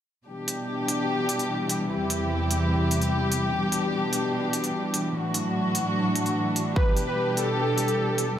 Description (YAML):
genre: heavy wobble dubstep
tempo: 148 BPM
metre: 4/4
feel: half-time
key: E minor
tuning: A4 = 441 Hz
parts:
  - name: dark studio string section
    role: sustained chords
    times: 0.3-8.4 s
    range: E2 to G4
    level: -24 LUFS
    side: equal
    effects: sidechain pumping
  - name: electronic hi-hat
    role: drums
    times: 0.5-8.3 s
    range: none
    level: -30 LUFS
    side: right 1 dB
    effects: none
  - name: soft supersaw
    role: melody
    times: 6.8-8.3 s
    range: A4 to B4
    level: -26 LUFS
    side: right 1 dB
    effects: cassette tape, dub echo
  - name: electronic kick drum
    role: drums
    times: 6.8 s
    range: none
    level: -23 LUFS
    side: right 1 dB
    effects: none
room: moderate lush hall reverb, RT60 2.0 s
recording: none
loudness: -23 LUFS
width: side -10 dB against mid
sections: 0.3-8.4 A section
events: none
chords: 0.3 Em7; 1.9 C/E; 3.5 Em7; 5.1 Dadd9; 6.8 Em7